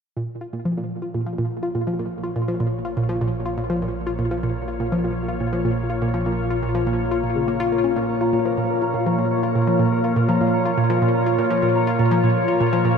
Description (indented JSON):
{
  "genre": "ambient, sequencer-driven space music",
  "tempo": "123 BPM",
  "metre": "4/4",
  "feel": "straight",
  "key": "Bb minor",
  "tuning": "A4 = 439 Hz",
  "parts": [
    { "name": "evolving wavetable pad", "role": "sustained chords", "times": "1.5-13.0 s", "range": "Bb2 to Db5", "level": "-22 LUFS", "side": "left 1 dB", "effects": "chorus, built-in reverb, shimmer reverb" },
    { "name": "analog pluck", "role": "riff", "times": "0.2-12.9 s", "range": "Bb2 to F4", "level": "-22 LUFS", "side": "equal", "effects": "chorus, tape echo" },
    { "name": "analog drone", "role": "bass", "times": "2.7-7.9 s", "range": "Bb1", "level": "-34 LUFS", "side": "equal", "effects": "chorus" },
    { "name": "concert harp", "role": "arpeggios", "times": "8.0-13.0 s", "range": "Bb4 to Bb5", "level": "-27 LUFS", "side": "right 2 dB", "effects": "auto-pan, low-pass filter, tape echo, shimmer reverb" }
  ],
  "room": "wet cathedral reverb, RT60 6.6 s",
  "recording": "in a vast, echoing space",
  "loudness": "-19 LUFS",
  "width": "side -6 dB against mid",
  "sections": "0.2-8.0 A section; 8.0-13.0 B section",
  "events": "fade-in on ambient pad 0.2-8.0; fade-in on synth drone 0.2-8.0; filter sweep on synth arpeggio sound 0.2-8.0; filter sweep on harp 8.0-13.0",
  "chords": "0.2 Bbm"
}